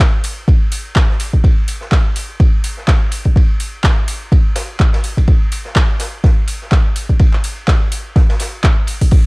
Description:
house; 125 BPM; 4/4; swing 56% on 16ths
electro analog drum machine; drums; 0.0-9.2 s; crash cymbal, handclaps, hi-hat; -21 LUFS; equal
electronic kick drum; drums; 0.0-9.2 s; -11 LUFS; equal
vintage drum kit; drums; 0.0-9.2 s; ride cymbal, snare drum; -30 LUFS; equal; sidechain pumping on cymbals, high-pass filter on cymbals, high-pass filter on snare, high-pass filter on room
small room reverb; dark, warm production; -12 LUFS; side -28 dB against mid
0.0-9.1 A section
0.00 0.48 0.96 | 1.44 1.92 2.40 2.88 | 3.36 3.84 4.32 4.80 | 5.28 5.76 6.24 6.72 | 7.20 7.68 8.16 8.64 | 9.12

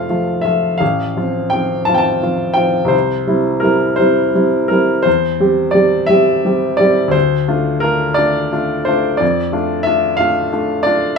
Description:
classical, romantic nocturne for solo piano; 54-62 BPM (dotted quarters); 12/8; rubato; A4 = 439 Hz
clear baby grand piano; solo; 0.0-11.2 s; F1 to A5; -13 LUFS; equal
light reverb; -13 LUFS; side -5 dB against mid
0.0-11.2 A section
0.0 F; 0.8 F/A; 2.9 C; 5.1 C/E; 7.1 Dm7; 9.2 Dm/F
0.81 1.89 | 2.93 4.00 5.06 6.11 | 7.15 8.19 9.22 10.19

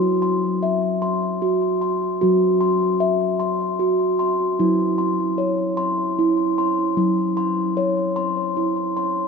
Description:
world meditative; 50 BPM (dotted quarters); 6/8; straight; A4 = 440 Hz
steel tongue drum; solo; 0.0-9.3 s; F#3 to B#5; -18 LUFS; equal; ping-pong delay
wet cathedral reverb, RT60 6.5 s; dark, warm production, nothing above 7.6 kHz; -18 LUFS; side -5 dB against mid
0.0-9.3 A section
0.0 C; 4.6 C#mmaj7
1.04 | 2.22 3.41 | 4.60 5.79 | 6.98 8.17

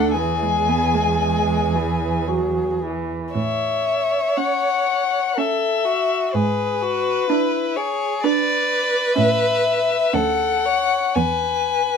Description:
classical, slow romantic movement for string quartet; 53-65 BPM; 3/4; rubato; A major; A4 = 442 Hz
rich violin; melody; 0.0-12.0 s; B4 to G#5; -21 LUFS; left 6 dB
rich violin; second line; 0.0-12.0 s; E4 to C#5; -23 LUFS; equal
rich viola; accompaniment; 0.0-12.0 s; E3 to D4; -24 LUFS; right 6 dB
rich cello; bass; 0.0-12.0 s; D2 to A2; -24 LUFS; right 4 dB
moderate studio reverb, RT60 0.7 s; minimal, uncompressed stereo recording; -18 LUFS; side -6 dB against mid
0.0-12.0 A section
0.2 E; 3.4 A; 6.3 G#dim; 9.2 A; 10.1 Dmaj7; 11.2 E
| 0.15 1.22 2.28 | 3.35 4.38 5.38 | 6.34 7.30 8.24 | 9.18 10.14 11.16

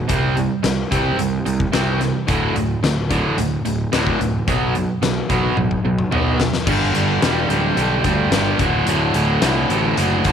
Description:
classic rock; 109 BPM; 4/4; straight; D mixolydian; A4 = 440 Hz
cranked stack guitar; riff; 0.0-10.3 s; D2 to C4; -19 LUFS; right 1 dB; overdrive
fuzz picked electric bass; bass; 0.1-10.3 s; D1 to D2; -22 LUFS; equal; overdrive
huge arena drum kit; drums; 0.1-10.3 s; crash cymbal, hi-hat, kick drum, snare drum, toms; -22 LUFS; left 3 dB
light reverb, studio ambience; 1960s-style stereo; -16 LUFS; side -8 dB against mid
0.0-6.7 A section; 6.7-10.3 B section
drum fill 5.6-6.7
0.1 C5; 2.3 D5; 4.5 B5; 6.7 G5; 8.6 D
| 0.10 0.65 1.19 1.74 | 2.29 2.83 3.38 3.93 | 4.47 5.02 5.57 6.12 | 6.67 7.22 7.77 8.32 | 8.88 9.43 9.98

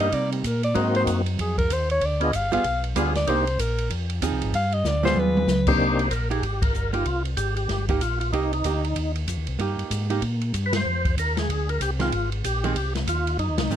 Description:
soul jazz organ trio; 190 BPM; 4/4; swing 61% on 8ths; C minor; A4 = 440 Hz
breathy alto saxophone; melody; 0.0-5.8 s; G4 to F5; -25 LUFS; left 1 dB
percussive tonewheel organ; melody; 0.0-3.4, 5.7-13.8 s; C3 to C5; -26 LUFS; left 1 dB; slow rotary speaker, overdrive, chorus vibrato
archtop guitar, miked and amplified; accompaniment; 0.0-13.8 s; Eb3 to Ab4; -28 LUFS; right 7 dB
tonewheel organ; bass; 0.0-13.8 s; G1 to C3; -26 LUFS; equal; chorus vibrato, slow rotary speaker
open jazz drum kit; drums; 0.0-13.8 s; crash cymbal, hi-hat, kick drum, ride cymbal, snare drum, toms; -29 LUFS; equal
little or no reverb; close, detailed microphones; -21 LUFS; side -10 dB against mid
0.0-5.8 A section; 5.8-13.8 B section
alto saxophone solo 0.0-5.8; drum fill 4.8-5.5; band accent 6.6, 10.7, 13.5
0.0 Cm7; 0.8 Ab7; 2.0 G7b9; 3.3 Cm7; 3.9 Fm7; 4.5 G7b9; 5.8 Cm7; 10.9 Fm7
0.12 0.44 | 0.75 1.07 1.38 1.70 | 2.01 2.33 2.64 2.96 | 3.27 3.59 3.90 4.22 | 4.53 4.85 5.16 5.48 | 5.79 6.11 6.43 6.74 | 7.06 7.37 7.69 8.01 | 8.32 8.64 8.95 9.27 | 9.59 9.90 10.22 10.54 | 10.85 11.17 11.48 11.80 | 12.12 12.43 12.75 13.07 | 13.38 13.70

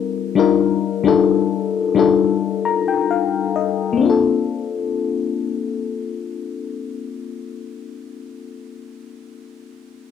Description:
R&B; 66 BPM; 4/4; straight; Bb major; A4 = 440 Hz
FM electric piano with auto-pan; accompaniment; 0.0-10.1 s; G3 to Bb5; -18 LUFS; left 7 dB
moderate booth ambience, RT60 0.3 s; home recording on cassette; -17 LUFS; side -7 dB against mid
0.0-4.0 A section; 4.0-7.6 B section
FM electric piano fill 2.2-4.0
0.4 Ebmaj7; 4.0 Bbmaj9
| 0.37 1.28 2.19 3.10 | 4.00 4.92 5.82 6.73

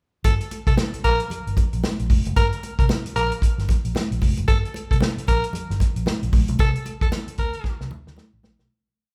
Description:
funk; 114 BPM; 4/4; swing 60% on 16ths; G dorian; A4 = 440 Hz
growling tenor saxophone; second line; 0.2-7.7 s; A4 to Bb4; -29 LUFS; equal
vintage muted fingered electric bass; bass; 0.2-8.7 s; F1 to E2; -29 LUFS; equal
warm soul drum kit; drums; 0.2-8.7 s; hi-hat, kick drum, snare drum; -24 LUFS; equal
congas; percussion; 0.2-8.7 s; -35 LUFS; equal
moderate large studio reverb, RT60 1.5 s; band playing live in one room; -22 LUFS; mono
0.2-8.7 groove
fade-out 6.6-8.7; drum fill 7.6-8.7
0.2 Gm; 6.6 C7sus2
| 0.25 0.78 1.31 1.84 | 2.37 2.90 3.42 3.95 | 4.48 5.01 5.54 6.07 | 6.59 7.12 7.65 8.17

